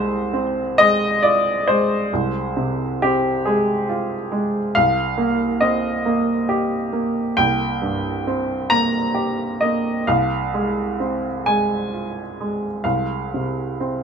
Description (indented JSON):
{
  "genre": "neoclassical minimalist piano",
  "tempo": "45 BPM (dotted quarters)",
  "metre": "6/8",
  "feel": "uneven beats, rubato",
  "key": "unclear",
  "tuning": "A4 = 441 Hz",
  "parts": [
    { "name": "warm upright piano", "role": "solo", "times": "0.0-14.0 s", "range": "C2 to Bb5", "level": "-18 LUFS", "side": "equal", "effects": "none" }
  ],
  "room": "moderate studio reverb, RT60 0.7 s",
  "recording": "minimal, uncompressed stereo recording",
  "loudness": "-18 LUFS",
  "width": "side -6 dB against mid",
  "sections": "0.0-14.0 A section",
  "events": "none",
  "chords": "0.0 Fm/C; 4.7 Cm7; 10.1 Fm/C",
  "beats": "0.76 | 2.10 3.43 | 4.74 6.05 | 7.37 8.71 | 10.07 11.44 | 12.84"
}